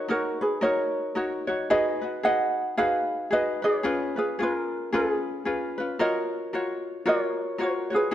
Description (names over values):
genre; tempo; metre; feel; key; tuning
Hawaiian; 112 BPM; 4/4; swing 60% on 8ths; F# major; A4 = 441 Hz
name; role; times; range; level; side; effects
ukulele; melody; 0.0-8.1 s; E#4 to F#5; -26 LUFS; right 1 dB; none
ukulele; accompaniment; 0.0-8.1 s; C#4 to C#5; -28 LUFS; left 2 dB; none
room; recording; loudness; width
moderate recital hall reverb, RT60 1.5 s; close, detailed microphones; -24 LUFS; side -11 dB against mid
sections
0.0-8.1 A section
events
none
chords
0.0 D#m7; 1.7 B6; 3.8 C#7; 6.0 F#maj7